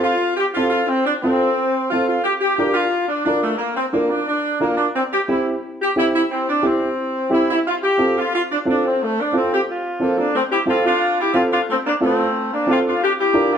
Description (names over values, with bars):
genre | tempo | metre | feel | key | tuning
latin | 178 BPM | 4/4 | straight | F major | A4 = 442 Hz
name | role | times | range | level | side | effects
warm saxophone section | melody | 0.0-13.6 s | F3 to G4 | -18 LUFS | equal | none
dark upright piano | accompaniment | 0.0-13.6 s | C4 to Bb4 | -21 LUFS | right 1 dB | none
room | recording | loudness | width
wet large studio reverb, RT60 1.3 s | none | -16 LUFS | side -8 dB against mid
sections
0.0-10.3 A section; 10.3-13.6 B section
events
none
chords
0.0 F; 2.2 Bb; 4.9 C; 7.6 F; 13.0 Bb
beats
0.22 0.56 | 0.90 1.23 1.57 1.91 | 2.25 2.58 2.92 3.26 | 3.60 3.93 4.27 4.61 | 4.95 5.29 5.62 5.96 | 6.30 6.63 6.97 7.31 | 7.64 7.98 8.32 8.65 | 8.99 9.32 9.66 9.99 | 10.33 10.67 11.00 11.34 | 11.67 12.01 12.34 12.68 | 13.01 13.35